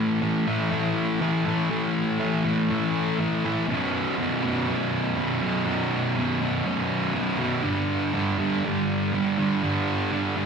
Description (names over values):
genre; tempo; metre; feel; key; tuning
rock; 121 BPM; 4/4; straight; unclear; A4 = 440 Hz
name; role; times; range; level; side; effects
fuzz guitar; solo; 0.0-10.5 s; B1 to A3; -22 LUFS; equal; distortion
room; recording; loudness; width
moderate club reverb, RT60 0.7 s; live gig heard through the venue's PA, recital hall reverb; -22 LUFS; side -6 dB against mid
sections
0.0-10.5 A section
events
none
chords
0.0 A5; 3.7 B5; 7.7 G5